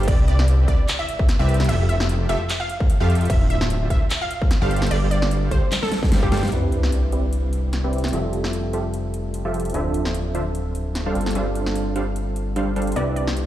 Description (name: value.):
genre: future bass.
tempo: 149 BPM.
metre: 4/4.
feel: swing 55% on 16ths, half-time.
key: C major.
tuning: A4 = 440 Hz.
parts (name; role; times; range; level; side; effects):
supersaw stab; riff; 0.0-13.5 s; D3 to F5; -27 LUFS; right 1 dB; sidechain pumping, low-pass filter, digital delay.
fat analog bass; bass; 0.0-13.5 s; D1 to G2; -22 LUFS; equal; sidechain pumping.
dubstep drum kit; drums; 0.0-13.5 s; crash cymbal, handclaps, hi-hat, snare drum; -28 LUFS; equal; studio reverb.
wide unison pluck; melody; 0.1-6.4, 13.0-13.4 s; G4 to F5; -28 LUFS; equal; sidechain pumping, digital delay.
electronic kick drum; drums; 0.1-6.3 s; none; -19 LUFS; equal; distortion, studio reverb.
bright tine electric piano; accompaniment; 6.5-13.5 s; F3 to E5; -29 LUFS; equal; auto-pan, sidechain pumping, digital delay.
sub drop; sound effects; 6.5-8.1 s; none; -26 LUFS; left 1 dB; none.
room: digital ambience.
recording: played on a big sound system in a bare room, large studio reverb.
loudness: -19 LUFS.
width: side -13 dB against mid.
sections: 0.0-6.5 A section; 6.5-13.5 B section.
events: drop 0.0-6.5; drum fill 5.7-6.5; impact 6.5-8.1; filter sweep on supersaw synth 6.5-13.5.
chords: 0.1 Cmaj9; 1.7 Fmaj9; 3.3 Dm9; 4.7 G9sus4; 6.5 Cmaj9; 8.1 Fmaj9; 9.7 Dm9; 11.2 G9sus4.